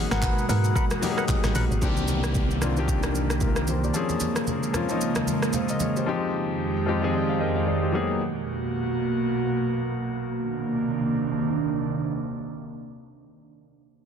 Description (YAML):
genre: amapiano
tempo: 113 BPM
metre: 4/4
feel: swing 58% on 16ths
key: unclear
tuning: A4 = 438 Hz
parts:
  - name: clear grand piano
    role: accompaniment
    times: 0.0-8.2 s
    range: D3 to G5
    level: -27 LUFS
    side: left 4 dB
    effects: low-pass filter
  - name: airy breathy pad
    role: sustained chords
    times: 0.0-13.4 s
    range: F2 to G4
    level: -27 LUFS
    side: right 3 dB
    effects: chorus, sidechain pumping, low-pass filter
  - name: woody log drum bass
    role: bass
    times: 0.0-1.8 s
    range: Ab1 to Ab2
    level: -25 LUFS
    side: equal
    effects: none
  - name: percussive organ stab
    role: stabs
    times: 0.1-1.7 s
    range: Bb4 to Gb5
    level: -31 LUFS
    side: left 1 dB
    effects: chorus, phaser, ping-pong delay
  - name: deep house drum kit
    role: drums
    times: 0.1-6.1 s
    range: handclaps, hi-hat, kick drum, rim click, shaker, snare drum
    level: -28 LUFS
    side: equal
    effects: overdrive
  - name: congas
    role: percussion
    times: 0.2-5.9 s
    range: none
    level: -34 LUFS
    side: right 2 dB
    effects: none
  - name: fingered electric bass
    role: bass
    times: 1.8-3.9 s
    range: C2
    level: -28 LUFS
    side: equal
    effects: none
  - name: downlifter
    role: sound effects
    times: 1.8-6.1 s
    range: none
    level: -37 LUFS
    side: equal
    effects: none
room: light reverb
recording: dense, heavily limited modern master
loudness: -23 LUFS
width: side -7 dB against mid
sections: 0.0-1.8 A section; 1.8-10.3 B section; 10.3-14.1 C section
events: drop 0.0-1.8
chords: 0.0 Abm9; 1.8 Cm9; 3.9 Bbm9; 6.1 Fm9; 7.9 Abm9 (rootless); 10.3 Cm9